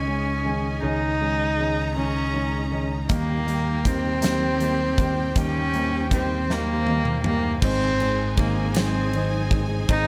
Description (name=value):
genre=six-eight pop ballad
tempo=53 BPM (dotted quarters)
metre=6/8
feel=straight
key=Ab major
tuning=A4 = 440 Hz
part: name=warm cello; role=melody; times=0.0-10.1 s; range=Bb3 to Eb4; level=-28 LUFS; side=equal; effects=digital delay
part: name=warm studio string section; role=sustained chords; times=0.0-10.1 s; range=Eb4 to Bb5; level=-35 LUFS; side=equal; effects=none
part: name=fingered electric bass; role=bass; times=0.0-10.1 s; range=Ab1 to Eb2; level=-30 LUFS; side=equal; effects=none
part: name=felt-muted upright piano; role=accompaniment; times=0.1-10.1 s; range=Eb3 to Db4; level=-31 LUFS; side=equal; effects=none
part: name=huge arena drum kit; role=drums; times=3.1-10.1 s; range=crash cymbal, hi-hat, kick drum, ride cymbal, snare drum, toms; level=-29 LUFS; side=equal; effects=none
room=light reverb, small room ambience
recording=none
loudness=-23 LUFS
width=mono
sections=0.0-7.6 A section; 7.6-10.1 B section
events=drum fill 6.5-7.6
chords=0.0 Dbsus2; 3.1 Eb; 7.6 Ab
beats=| 0.84 1.97 | 3.10 4.23 | 5.36 6.50 | 7.63 8.76 | 9.89